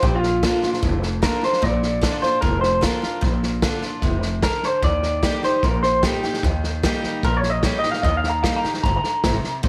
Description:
rockabilly; 150 BPM; 4/4; straight; A4 = 441 Hz
electric guitar through a small old amp; melody; 0.0-9.7 s; F4 to Bb5; -24 LUFS; equal; tape echo
picked steel-string acoustic guitar; accompaniment; 0.0-9.7 s; F2 to G4; -30 LUFS; equal
upright bass; bass; 0.0-9.7 s; F1 to Eb2; -26 LUFS; equal
vintage drum kit; drums; 0.0-9.7 s; hi-hat, kick drum, snare drum; -26 LUFS; equal
light reverb, studio reverb; -21 LUFS; mono
0.0-9.7 A section
0.0 Bb; 4.8 Eb

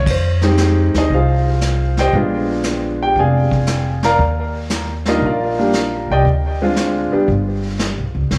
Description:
jazz piano trio; 116 BPM; 4/4; swing 69% on 8ths; Eb major; A4 = 440 Hz
clear concert grand piano; melody; 0.0-7.3 s; G3 to Bb5; -20 LUFS; equal; analog delay
upright bass; bass; 0.0-8.4 s; F1 to F2; -20 LUFS; equal
vintage brush drum kit; drums; 0.1-8.4 s; brushed snare drum, crash cymbal, hi-hat, kick drum, snare drum; -26 LUFS; equal
moderate plate reverb, RT60 1.0 s, studio reverb; dreamy mix soaked in reverb; -17 LUFS; mono
0.0-8.3 A section
0.1 Fm9; 2.1 Bb7b9; 4.2 Ebmaj9; 6.3 Dm7b5; 7.3 G

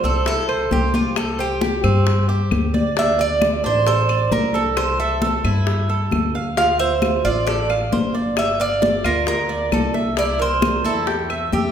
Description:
latin, Cuban son and guajira; 133 BPM; 4/4; straight; A4 = 441 Hz
Cuban tres; melody; 0.0-11.7 s; F4 to F5; -21 LUFS; right 1 dB
Cuban tres; arpeggios; 0.0-11.7 s; C4 to F5; -23 LUFS; right 5 dB
upright bass; bass; 0.0-11.7 s; G1 to G2; -23 LUFS; left 1 dB
bongos; percussion; 0.0-11.7 s; -28 LUFS; left 5 dB
congas; percussion; 0.0-11.7 s; -24 LUFS; left 2 dB
claves; percussion; 0.5-11.5 s; -33 LUFS; left 4 dB
wet recital hall reverb, RT60 1.7 s; recorded in a church or concert hall; -17 LUFS; side -8 dB against mid
0.0-11.7 A section
0.0 C; 1.2 C5; 3.0 D5; 4.8 C6; 6.6 Dm7; 8.4 Gm7; 10.2 C7

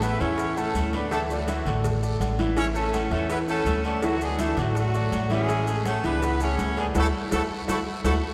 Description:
latin, salsa; 164 BPM; 4/4; straight; A major; A4 = 440 Hz
clear horn section; melody; 0.0-8.1 s; F#3 to C#5; -30 LUFS; equal
bright grand piano; accompaniment; 0.0-8.2 s; E3 to E5; -31 LUFS; equal
upright bass; bass; 0.0-8.2 s; A1 to E2; -30 LUFS; equal
agogo bells and timbales; percussion; 0.0-8.1 s; -38 LUFS; equal
congas; percussion; 0.0-8.1 s; -37 LUFS; equal
cowbell; percussion; 0.0-8.1 s; -40 LUFS; equal
guiro; percussion; 0.0-8.1 s; -45 LUFS; equal
maracas; percussion; 0.0-8.1 s; -48 LUFS; equal
wet church reverb, RT60 3.0 s; recorded in a church or concert hall; -25 LUFS; mono
0.0-8.3 A section
band accent 7.0-8.3; drum fill 7.9-8.3
0.0 Amaj7; 1.1 Dadd9; 5.5 Amaj7; 7.0 Dadd9

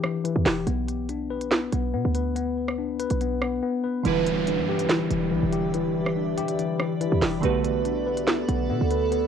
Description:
hip hop, drill; 142 BPM; 4/4; half-time; E minor; A4 = 440 Hz
mellow tine electric piano; arpeggios; 0.0-9.3 s; E3 to B4; -26 LUFS; left 7 dB; medium stereo tremolo, low-pass filter, cassette tape, tape echo
drill drum kit; drums; 0.0-9.2 s; handclaps, hi-hat, rim click, snare drum; -26 LUFS; right 2 dB; cassette tape
short 808-style bass; bass; 0.4-9.3 s; E1 to B2; -28 LUFS; right 2 dB
glassy digital keys; accompaniment; 4.0-9.3 s; D3 to B4; -28 LUFS; right 12 dB; chorus, low-pass filter, cassette tape
granular cloud pad; sustained chords; 5.0-9.3 s; G4 to B5; -30 LUFS; right 4 dB; built-in reverb, cassette tape
downlifter; sound effects; 4.0-7.4 s; -35 LUFS; right 2 dB
moderate studio reverb, RT60 0.6 s; home recording on cassette; -23 LUFS; side -8 dB against mid
0.0-4.0 A section; 4.0-9.3 B section
drums muted 3.6-4.0
0.0 Em7; 0.7 Bm; 4.0 Em7; 7.4 Bm7

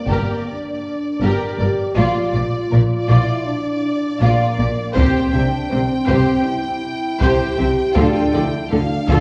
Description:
cinematic, epic orchestral film score; 80 BPM; 4/4; straight; G dorian; A4 = 440 Hz
rich symphonic violin section; melody; 0.0-9.2 s; D5 to G5; -30 LUFS; equal
dark French horn section; sustained chords; 0.0-9.2 s; Bb3 to G4; -24 LUFS; equal
warm symphonic violin section; second line; 0.1-9.2 s; F4 to E5; -28 LUFS; equal
rich symphonic viola section; accompaniment; 0.1-9.2 s; A4 to D5; -28 LUFS; equal
clear symphonic double bass section; bass; 0.1-9.2 s; G1 to D2; -24 LUFS; equal
rich symphonic cello section; bass; 0.1-9.2 s; G2 to D3; -24 LUFS; equal
taiko ensemble; drums; 5.0-9.2 s; -24 LUFS; equal
wet scoring stage reverb, RT60 2.0 s; worn, warbling old tape, cassette tape, warbly pitch drift, small room reverb; -18 LUFS; mono
0.0-9.2 A section
0.0 Gm; 2.0 Bb; 5.0 C; 8.0 Dm

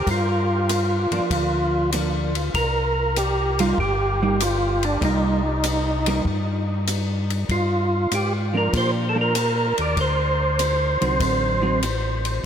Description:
soul jazz organ trio; 97 BPM; 4/4; swing 69% on 8ths; G minor; A4 = 440 Hz
percussive tonewheel organ; melody; 0.0-11.8 s; D4 to D5; -22 LUFS; right 1 dB; overdrive, chorus vibrato, stopped rotary speaker, analog delay
mellow tonewheel organ; bass; 0.0-12.4 s; G1 to Bb2; -24 LUFS; left 1 dB; slow rotary speaker
compact cocktail drum kit; drums; 0.1-12.3 s; hi-hat, kick drum, ride cymbal; -28 LUFS; left 2 dB
vintage hollow-body jazz guitar; accompaniment; 1.1-11.8 s; D3 to Eb4; -28 LUFS; right 3 dB; analog chorus
moderate huge ambient reverb, RT60 8.8 s; dreamy mix soaked in reverb; -19 LUFS; side -8 dB against mid
0.0-12.5 A section
0.0 Gm7; 2.5 Cm7; 7.5 Gm7; 10.0 D7b9

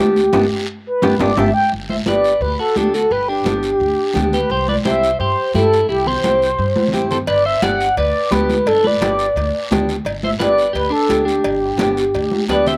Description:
latin, cumbia; 173 BPM; 4/4; straight; G major; A4 = 439 Hz
mellow horn-like synth lead; melody; 0.0-12.8 s; G4 to G5; -19 LUFS; equal; chorus
nylon-string guitar; accompaniment; 0.0-12.7 s; B3 to A4; -23 LUFS; equal; slapback echo
upright bass; bass; 0.0-12.8 s; G1 to G2; -27 LUFS; equal
guiro; percussion; 0.2-12.8 s; -34 LUFS; equal; slapback echo
congas; percussion; 0.3-12.7 s; -25 LUFS; equal
timbales and cowbell; percussion; 0.3-1.5, 7.3-12.7 s; -27 LUFS; equal; slapback echo
clean electric guitar; second line; 1.9-12.7 s; D4 to D5; -28 LUFS; equal; slapback echo
light reverb; recorded outdoors, with no room sound; -17 LUFS; mono
0.0-1.7 A section; 1.7-12.8 B section
soft synth lead solo 0.0-1.7; band accent 0.3-1.7; drum fill 0.7-1.7, 6.8-7.3, 12.3-12.8
0.0 G; 4.5 C; 7.3 G

